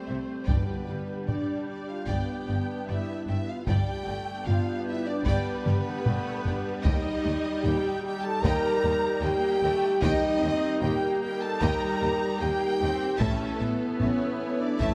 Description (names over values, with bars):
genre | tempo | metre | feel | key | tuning
cinematic, epic orchestral film score | 76 BPM | 4/4 | straight | unclear | A4 = 440 Hz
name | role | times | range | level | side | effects
warm symphonic violin section | melody | 0.0-14.9 s | A4 to Bb5 | -38 LUFS | equal | none
rich symphonic viola section | accompaniment | 0.0-14.9 s | G3 to C#4 | -37 LUFS | equal | none
mellow French horn section | sustained chords | 0.0-14.9 s | A3 to Bb4 | -32 LUFS | equal | none
mellow woodwind section | sustained chords | 0.0-14.9 s | G3 to G5 | -40 LUFS | equal | none
warm trombone section | sustained chords | 0.0-14.9 s | E3 to G4 | -41 LUFS | equal | none
warm symphonic violin section | second line | 0.1-14.9 s | C5 to A5 | -41 LUFS | equal | none
rich symphonic cello section | bass | 0.1-14.9 s | Eb2 to C3 | -35 LUFS | equal | none
warm symphonic double bass section | bass | 0.1-14.9 s | G1 to Eb2 | -35 LUFS | equal | none
taiko ensemble | drums | 0.5-14.9 s | none | -33 LUFS | equal | none
timpani | percussion | 0.5-1.7 s | G2 | -43 LUFS | equal | none
room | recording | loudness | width
wet concert hall reverb, RT60 2.2 s | none | -27 LUFS | mono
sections
0.0-14.9 A section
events
drum fill 5.7-6.9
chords
0.5 G; 6.9 Eb; 13.2 A